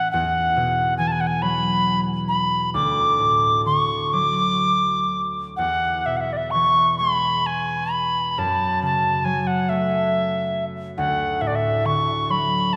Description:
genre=celtic folk, Celtic slow air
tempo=41-47 BPM (dotted quarters)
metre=6/8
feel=rubato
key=E mixolydian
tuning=A4 = 440 Hz
part: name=wooden whistle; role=melody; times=0.0-12.8 s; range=D5 to D6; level=-22 LUFS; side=equal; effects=none
part: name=concert harp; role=accompaniment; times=0.0-12.8 s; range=D2 to C#4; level=-28 LUFS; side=equal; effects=none
room=wet church reverb, RT60 3.5 s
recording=recorded in a church or concert hall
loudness=-21 LUFS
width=mono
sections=0.0-12.8 A section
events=none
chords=0.1 Esus2; 2.7 D; 5.6 E; 8.4 F#m; 11.0 D

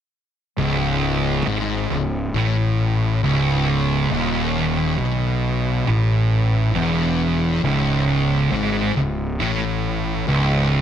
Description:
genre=metal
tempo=68 BPM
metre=4/4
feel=straight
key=C# minor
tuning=A4 = 441 Hz
part: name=thick fuzz guitar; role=riff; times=0.6-10.8 s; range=C#2 to B2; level=-22 LUFS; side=left 6 dB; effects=distortion
part: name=thick fuzz guitar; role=riff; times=0.6-10.8 s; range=C#2 to B2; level=-21 LUFS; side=right 6 dB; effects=distortion
part: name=fuzz fingered electric bass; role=bass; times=0.6-10.8 s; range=C#1 to B1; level=-25 LUFS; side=equal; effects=overdrive
room=moderate large studio reverb, RT60 1.2 s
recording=none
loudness=-18 LUFS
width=side -9 dB against mid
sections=0.6-10.8 A section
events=none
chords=0.6 C#m

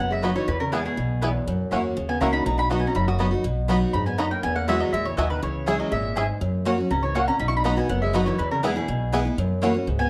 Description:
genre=bluegrass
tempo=243 BPM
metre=4/4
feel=straight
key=B major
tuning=A4 = 436 Hz
part: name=mandolin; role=melody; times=0.0-10.1 s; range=G#4 to D#6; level=-30 LUFS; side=equal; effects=none
part: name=lap resonator guitar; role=second line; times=0.0-10.1 s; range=B2 to F#4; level=-33 LUFS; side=equal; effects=none
part: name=picked steel-string acoustic guitar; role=accompaniment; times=0.0-10.1 s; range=E2 to F#4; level=-29 LUFS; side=equal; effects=none
part: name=upright bass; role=bass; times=0.0-10.1 s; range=F#1 to F#2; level=-30 LUFS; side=equal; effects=none
part: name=bluegrass banjo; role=melody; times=0.2-9.7 s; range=B3 to G#4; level=-32 LUFS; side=equal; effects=none
part: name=mandolin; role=stabs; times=0.2-9.7 s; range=A#3 to B5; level=-33 LUFS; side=equal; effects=none
room=moderate large studio reverb, RT60 1.0 s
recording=dark, warm production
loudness=-24 LUFS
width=mono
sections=0.0-3.4 A section; 3.4-10.1 A section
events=none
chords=0.5 E; 1.5 F#7; 2.5 B; 4.4 Eadd9; 5.4 C#m; 6.4 F#; 7.4 B; 8.4 E; 9.4 F#7

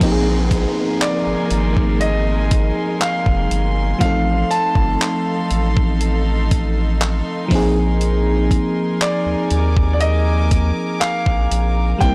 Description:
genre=contemporary R&B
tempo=60 BPM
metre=4/4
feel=straight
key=unclear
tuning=A4 = 440 Hz
part: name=FM electric piano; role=accompaniment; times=0.0-12.1 s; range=F3 to Bb4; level=-24 LUFS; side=equal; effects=chorus
part: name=clear studio string section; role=sustained chords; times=0.0-12.1 s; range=Eb4 to D6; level=-30 LUFS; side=equal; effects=none
part: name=round analog bass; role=bass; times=0.0-12.1 s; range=F1 to Eb2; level=-21 LUFS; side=equal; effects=none
part: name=clean 12-bit digital drum machine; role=drums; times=0.0-12.1 s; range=crash cymbal, handclaps, hi-hat, kick drum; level=-22 LUFS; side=equal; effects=soft clipping on snare
part: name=downlifter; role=sound effects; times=0.1-8.0 s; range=none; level=-34 LUFS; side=equal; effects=none
part: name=clear concert grand piano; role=melody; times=1.0-12.1 s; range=D5 to A5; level=-25 LUFS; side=equal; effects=digital delay
room=little or no reverb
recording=blown-out, overdriven recording, overdrive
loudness=-18 LUFS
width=mono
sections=0.0-12.1 A section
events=none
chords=0.0 Bb9sus4; 4.0 F7; 7.5 Bb9sus4

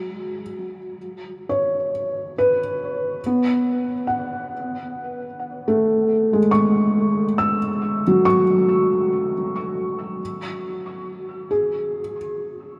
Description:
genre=ambient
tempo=68 BPM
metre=4/4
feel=straight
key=unclear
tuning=A4 = 441 Hz
part: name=felt-muted upright piano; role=solo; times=0.0-12.8 s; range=F#3 to E6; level=-22 LUFS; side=equal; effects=tape echo
room=wet cathedral reverb, RT60 6.2 s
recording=in a vast, echoing space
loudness=-21 LUFS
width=mono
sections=0.0-3.2 A section; 3.2-12.8 B section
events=none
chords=0.0 Bsus2; 10.2 A6 (rootless)

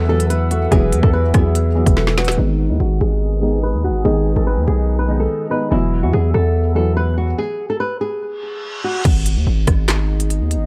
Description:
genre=hip hop, drill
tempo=144 BPM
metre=4/4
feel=half-time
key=G# phrygian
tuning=A4 = 441 Hz
part: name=flamenco guitar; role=melody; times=0.0-9.0 s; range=D#4 to B4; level=-24 LUFS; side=equal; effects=low-pass filter, delay
part: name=felt-muted upright piano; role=accompaniment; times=0.0-7.4 s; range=D#3 to E4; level=-25 LUFS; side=equal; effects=low-pass filter
part: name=warbly tape-like pad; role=sustained chords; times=0.0-10.7 s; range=B3 to E6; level=-33 LUFS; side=equal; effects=chorus, built-in reverb, low-pass filter
part: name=distorted 808-style bass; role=bass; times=0.0-10.7 s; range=D#1 to E2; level=-19 LUFS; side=equal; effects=distortion
part: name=drill drum kit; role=drums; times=0.2-2.4, 9.1-10.6 s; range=crash cymbal, handclaps, hi-hat, kick drum, rim click, snare drum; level=-19 LUFS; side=equal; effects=none
part: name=hollow clarinet-like synth lead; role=second line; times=0.5-2.4 s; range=G#4 to B4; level=-28 LUFS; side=equal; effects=chorus, phaser, delay
part: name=reverse cymbal and impact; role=sound effects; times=8.4-10.7 s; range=none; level=-32 LUFS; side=equal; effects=none
room=little or no reverb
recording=dark, warm production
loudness=-17 LUFS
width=mono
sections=0.0-2.4 A section; 2.4-9.1 B section; 9.1-10.7 C section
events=drum fill 2.0-2.4; filter sweep 2.4-9.1; stop 7.4-9.1; reverse cymbal 8.4-9.1; impact 9.1-10.7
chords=0.0 Esus2; 2.4 G#m; 5.7 Esus2; 9.1 G#m

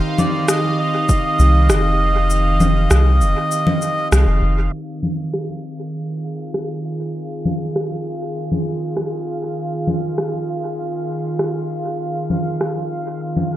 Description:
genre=ambient dub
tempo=99 BPM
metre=4/4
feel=straight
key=F minor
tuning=A4 = 439 Hz
part: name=airy breathy pad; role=sustained chords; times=0.0-13.6 s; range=Eb3 to Ab4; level=-23 LUFS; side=right 1 dB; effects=chorus
part: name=bubbling stepped-filter texture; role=texture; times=0.0-13.6 s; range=F5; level=-31 LUFS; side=right 2 dB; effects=chorus, built-in reverb
part: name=melodica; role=melody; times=0.2-4.1 s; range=D5 to Eb5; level=-21 LUFS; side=right 1 dB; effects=dub echo
part: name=electronic congas, shaker and rim click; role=drums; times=0.2-13.5 s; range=none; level=-21 LUFS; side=left 1 dB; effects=overdrive, dub echo
part: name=electronic kick drum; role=drums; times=1.1-1.2 s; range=none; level=-16 LUFS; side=equal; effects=none
part: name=soft dub sub bass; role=bass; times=1.4-4.7 s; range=F1 to C2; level=-14 LUFS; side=equal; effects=none
room=light reverb, digital ambience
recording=echo-heavy mix, low-pass filter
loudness=-17 LUFS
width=side -14 dB against mid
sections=0.0-4.7 A section; 4.7-13.6 B section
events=kick drops out 2.3-4.7; band accent 4.1-4.4; filter sweep 4.7-13.6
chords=0.0 Cm; 4.7 Fm7

